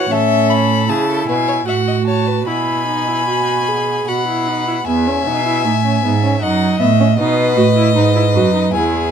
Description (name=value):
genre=classical, baroque-style fugue for string quartet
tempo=77 BPM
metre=3/4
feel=straight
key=unclear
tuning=A4 = 441 Hz
part: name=clear violin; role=melody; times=0.0-9.1 s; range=D#5 to B5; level=-18 LUFS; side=left 7 dB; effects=none
part: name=rich violin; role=second line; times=0.0-9.1 s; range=G#4 to G#5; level=-22 LUFS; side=left 4 dB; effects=none
part: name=rich viola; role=accompaniment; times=0.0-9.1 s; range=B3 to G#4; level=-20 LUFS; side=right 3 dB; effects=none
part: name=clear cello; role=bass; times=0.0-9.1 s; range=E2 to E3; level=-17 LUFS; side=right 5 dB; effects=none
room=light reverb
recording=none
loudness=-13 LUFS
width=side -8 dB against mid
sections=0.0-4.9 A section; 4.9-9.1 B section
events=none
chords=0.1 F#m7/A; 2.5 Bsus4; 4.1 B; 4.9 E; 6.4 D#dim/F#; 7.2 B